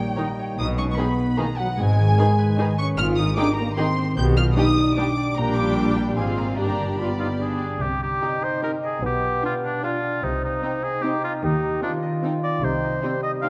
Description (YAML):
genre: cinematic, playful, whimsical film cue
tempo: 150 BPM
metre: 3/4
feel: straight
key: C minor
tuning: A4 = 440 Hz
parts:
  - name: muted studio violin section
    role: melody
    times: 0.0-13.5 s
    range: F#5 to G6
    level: -31 LUFS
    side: equal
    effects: none
  - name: dark French horn section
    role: sustained chords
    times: 0.0-13.5 s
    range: F#3 to G4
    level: -29 LUFS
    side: equal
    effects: none
  - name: concert harp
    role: arpeggios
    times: 0.0-13.5 s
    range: G2 to G#5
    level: -30 LUFS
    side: equal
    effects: none
  - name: muted chamber violin section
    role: second line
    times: 0.2-13.5 s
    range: Eb4 to G5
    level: -36 LUFS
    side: equal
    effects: none
  - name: muted symphonic viola section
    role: accompaniment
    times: 0.2-13.5 s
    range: D#3 to G4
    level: -32 LUFS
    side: equal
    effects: none
  - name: muted chamber cello section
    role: bass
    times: 0.6-12.9 s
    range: G2 to Eb3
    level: -32 LUFS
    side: equal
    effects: none
  - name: muted chamber double bass section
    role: bass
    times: 0.6-12.9 s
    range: G1 to Eb2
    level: -29 LUFS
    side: equal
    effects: none
  - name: clear oboe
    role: second line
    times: 7.2-13.5 s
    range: D4 to F5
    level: -29 LUFS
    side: equal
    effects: none
  - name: dark bassoon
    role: accompaniment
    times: 8.2-13.5 s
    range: G3 to G4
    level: -30 LUFS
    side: equal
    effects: none
room: wet concert hall reverb, RT60 2.1 s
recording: dark, warm production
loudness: -22 LUFS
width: mono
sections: 0.0-7.8 A section; 7.8-13.5 B section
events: none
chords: 0.0 D#7/A#; 0.6 G#m/B; 1.8 G#m; 3.0 Abmaj7; 4.2 G/B; 5.4 Gm/Bb; 6.2 Fm/Ab; 6.6 G; 7.8 Cm; 9.0 G7/B; 10.2 Cm; 11.4 Cm/Eb; 12.6 Cm